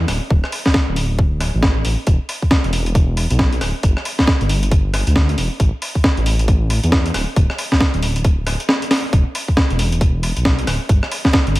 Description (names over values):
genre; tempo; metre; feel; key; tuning
UK garage, two-step garage; 136 BPM; 4/4; swing 61% on 16ths; E minor; A4 = 440 Hz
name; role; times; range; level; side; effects
dark detuned saw bass; bass; 0.0-11.6 s; D1 to E2; -18 LUFS; equal; none
breakbeat sampler-style drum kit; drums; 0.1-11.6 s; hi-hat, rim click, snare drum; -19 LUFS; equal; none
electronic kick drum; drums; 0.3-11.4 s; none; -15 LUFS; equal; none
room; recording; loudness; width
little or no reverb; vinyl crackle; -15 LUFS; side -18 dB against mid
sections
0.0-11.6 A section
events
drum fill 8.9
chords
none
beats
| 0.30 0.74 1.19 1.63 | 2.07 2.51 2.95 3.39 | 3.83 4.27 4.72 5.16 | 5.60 6.04 6.48 6.92 | 7.36 7.80 8.24 8.69 | 9.13 9.57 10.01 10.45 | 10.89 11.33